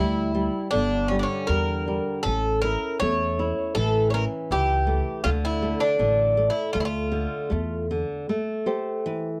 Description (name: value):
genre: fado-style ballad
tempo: 79 BPM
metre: 2/4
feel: rubato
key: D harmonic minor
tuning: A4 = 437 Hz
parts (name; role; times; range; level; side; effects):
- Irish bouzouki; melody; 0.0-7.8 s; C#4 to C#5; -27 LUFS; equal; none
- flamenco guitar; accompaniment; 0.0-9.4 s; D3 to C5; -31 LUFS; equal; none
- upright bass; bass; 0.0-8.0 s; G1 to E2; -29 LUFS; equal; none
room: light reverb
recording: none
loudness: -25 LUFS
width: mono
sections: 0.0-8.3 A section; 8.3-9.4 B section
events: none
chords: 0.0 Gm; 2.3 A; 5.3 Dm; 8.3 Am7